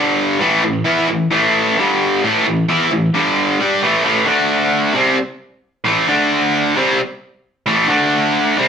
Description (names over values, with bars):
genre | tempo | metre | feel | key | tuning
rock | 132 BPM | 4/4 | straight | A minor | A4 = 440 Hz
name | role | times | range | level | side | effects
overdriven electric guitar | solo | 0.0-8.7 s | G2 to G4 | -13 LUFS | equal | none
room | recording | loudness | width
moderate studio reverb, RT60 0.7 s | band playing live in one room | -13 LUFS | side -7 dB against mid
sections
0.0-4.0 A section; 4.0-8.7 B section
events
none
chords
0.4 A5; 1.8 G5; 2.2 A5; 3.1 G5; 3.6 A5; 4.3 D5; 5.0 Am; 6.1 D5; 6.8 Am; 7.9 D5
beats
| 0.41 0.86 1.32 1.77 | 2.23 2.68 3.13 3.59 | 4.04 4.50 4.95 5.41 | 5.86 6.31 6.77 7.22 | 7.67 8.13 8.58